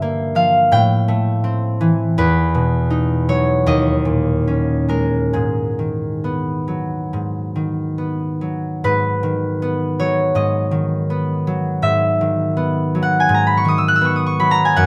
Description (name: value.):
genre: classical, solo harp piece.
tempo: 65-86 BPM.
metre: 4/4.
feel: rubato.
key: G# minor.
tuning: A4 = 440 Hz.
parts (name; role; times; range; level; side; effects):
concert harp; solo; 0.0-14.9 s; D#2 to F#6; -18 LUFS; equal; none.
room: light reverb.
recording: none.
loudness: -18 LUFS.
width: mono.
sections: 0.0-8.8 A section; 8.8-14.9 A section.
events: none.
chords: 0.0 Gm7; 0.7 Am7; 2.2 Esus2; 3.7 D#7sus4; 5.3 G#m9.